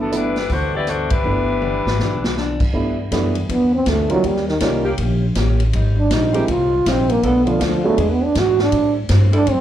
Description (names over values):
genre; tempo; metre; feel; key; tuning
jazz, big band swing; 160 BPM; 4/4; swing 63% on 8ths; G major; A4 = 441 Hz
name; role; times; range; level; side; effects
bright saxophone section; melody; 0.0-2.6 s; F#3 to D5; -22 LUFS; left 4 dB; slapback echo
warm grand piano; accompaniment; 0.0-8.0 s; F3 to G4; -22 LUFS; right 3 dB; slapback echo
upright bass; bass; 0.0-9.6 s; G1 to A2; -20 LUFS; equal; none
picked plugged-in steel-string acoustic guitar; accompaniment; 0.1-9.6 s; G2 to G#4; -26 LUFS; left 4 dB; slapback echo
swinging big-band drum kit; drums; 0.1-9.6 s; crash cymbal, hi-hat, kick drum, ride cymbal, rim click, snare drum, toms; -25 LUFS; equal; none
breathy trombone; melody; 3.5-9.6 s; D3 to F#4; -17 LUFS; right 2 dB; slapback echo
warm saxophone section; sustained chords; 4.8-9.4 s; Eb3 to A4; -27 LUFS; left 1 dB; none
room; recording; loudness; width
light reverb; live gig heard through the venue's PA, club reverb; -15 LUFS; side -11 dB against mid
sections
0.0-2.7 A section; 2.7-9.6 B section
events
band accent 1.1; drum fill 1.6-2.4; trombone solo 2.7-9.6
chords
0.0 G6; 4.2 Eb7; 5.7 Abmaj7; 7.2 Bm7b5; 8.0 E7; 8.7 Am7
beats
0.12 0.49 0.87 | 1.24 1.62 1.99 2.37 | 2.74 3.11 3.49 3.86 | 4.24 4.61 4.98 5.36 | 5.73 6.10 6.48 6.85 | 7.22 7.60 7.97 8.35 | 8.72 9.09 9.47